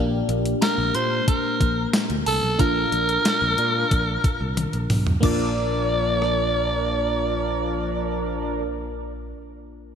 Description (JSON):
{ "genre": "1980s-style pop", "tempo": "91 BPM", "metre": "4/4", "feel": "straight", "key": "Bb major", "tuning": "A4 = 438 Hz", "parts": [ { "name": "FM electric piano", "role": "accompaniment", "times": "0.0-9.9 s", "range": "Bb1 to D5", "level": "-28 LUFS", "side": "left 1 dB", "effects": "chorus, phaser" }, { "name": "picked electric bass", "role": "bass", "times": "0.0-9.3 s", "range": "Bb1 to Bb2", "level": "-28 LUFS", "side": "equal", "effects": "none" }, { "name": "clean 12-bit digital drum machine", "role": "drums", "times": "0.3-6.4 s", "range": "crash cymbal, hi-hat, kick drum, rim click, snare drum, tambourine, toms", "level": "-24 LUFS", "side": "equal", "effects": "overdrive, gated reverb" }, { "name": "raspy alto saxophone", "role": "melody", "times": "0.6-8.6 s", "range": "A4 to D5", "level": "-25 LUFS", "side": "equal", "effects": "none" }, { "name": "soft synth bell", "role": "second line", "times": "0.6-9.3 s", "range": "A5 to D6", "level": "-33 LUFS", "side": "right 2 dB", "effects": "chorus, phaser, digital delay" }, { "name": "mellow synth brass", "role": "stabs", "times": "2.6-8.6 s", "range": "F3 to Bb4", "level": "-29 LUFS", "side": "right 2 dB", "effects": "chorus, digital delay" } ], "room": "moderate lush hall reverb, RT60 2.8 s", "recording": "bright 1980s-style digital production", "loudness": "-20 LUFS", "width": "side -7 dB against mid", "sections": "0.0-5.2 A section; 5.2-7.9 B section", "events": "band accent 2.6-5.2; drum fill 4.6-5.2", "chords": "0.0 Gm/Bb; 2.6 Bb", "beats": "0.62 1.28 1.94 | 2.60 3.25 3.91 4.57 | 5.23 5.89 6.55 7.21" }